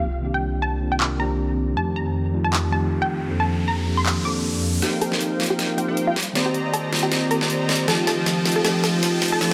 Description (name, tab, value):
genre	future bass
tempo	157 BPM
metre	4/4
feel	swing 54% on 16ths, half-time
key	unclear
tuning	A4 = 436 Hz
part	unison pluck	melody	0.0-9.5 s	F4 to D6	-29 LUFS	equal	tape echo
part	mellow tine electric piano	accompaniment	0.0-9.5 s	Eb3 to A4	-28 LUFS	equal	none
part	ethereal airy pad	sustained chords	0.1-9.5 s	Eb3 to D5	-36 LUFS	equal	none
part	detuned saw bass	bass	0.0-4.8 s	C2 to F2	-27 LUFS	equal	chorus
part	sub drop and riser	sound effects	0.0-9.5 s	none	-35 LUFS	equal	none
part	dubstep drum kit	drums	1.0-9.5 s	handclaps, hi-hat, snare drum	-27 LUFS	equal	overdrive, high-pass filter on hats, low-pass filter on hats, studio reverb, high-pass filter on snare, low-pass filter on snare
part	big bright polysynth	riff	4.8-9.5 s	F3 to Bb5	-26 LUFS	equal	chorus
room	moderate lush hall reverb, RT60 1.9 s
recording	none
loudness	-22 LUFS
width	mono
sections	0.0-4.8 A section; 4.8-9.5 B section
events	impact 0.0; filter sweep on ambient pad 0.0-4.8; riser 2.7-4.8; build-up 4.8-9.5; drum fill 4.8-9.5; filter sweep on analog polysynth 4.8-9.5; filter sweep on synth pluck 4.8-9.5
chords	0.0 Cm9; 1.8 F9; 3.3 Bbmaj9/F; 4.8 Eb69; 6.2 Cm9; 7.9 F9